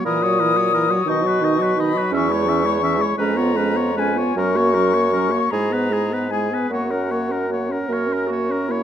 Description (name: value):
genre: classical, slow romantic movement for wind quintet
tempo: 48-59 BPM (dotted quarters)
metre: 6/8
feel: rubato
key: unclear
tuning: A4 = 443 Hz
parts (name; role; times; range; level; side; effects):
- clear oboe; second line; 0.0-8.8 s; G#4 to E5; -27 LUFS; left 3 dB; none
- mellow French horn; accompaniment; 0.0-8.8 s; D#3 to C#4; -24 LUFS; equal; none
- warm clarinet; accompaniment; 0.0-8.8 s; C#4 to A#4; -26 LUFS; right 9 dB; none
- silver concert flute; melody; 0.1-7.9 s; F#5 to D#6; -23 LUFS; left 7 dB; none
- warm bassoon; bass; 0.1-8.8 s; E2 to B2; -22 LUFS; right 1 dB; none
room: moderate recital hall reverb, RT60 1.7 s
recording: none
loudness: -17 LUFS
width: side -9 dB against mid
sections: 0.0-8.8 A section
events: none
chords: 0.1 F#7/A#; 1.1 B; 2.1 C#m/E; 3.2 C#7/E#; 4.4 F#; 5.5 E/G#; 6.7 F#